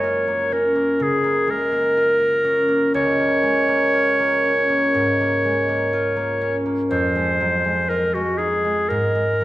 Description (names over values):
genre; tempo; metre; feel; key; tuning
classical, impressionist duo for clarinet and harp; 61 BPM; 4/4; rubato; Db major; A4 = 440 Hz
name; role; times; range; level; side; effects
bright clarinet; melody; 0.0-9.4 s; Gb4 to Db5; -18 LUFS; equal; none
concert harp; accompaniment; 0.0-9.4 s; Db2 to F4; -22 LUFS; equal; none
room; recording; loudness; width
wet recital hall reverb, RT60 1.4 s; none; -17 LUFS; side -15 dB against mid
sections
0.0-9.4 A section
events
none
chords
0.0 Gbmaj9; 2.9 Db6; 6.9 Fm7; 8.9 Absus2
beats
0.04 1.00 1.98 | 2.94 3.93 4.92 5.90 | 6.89 7.89 8.88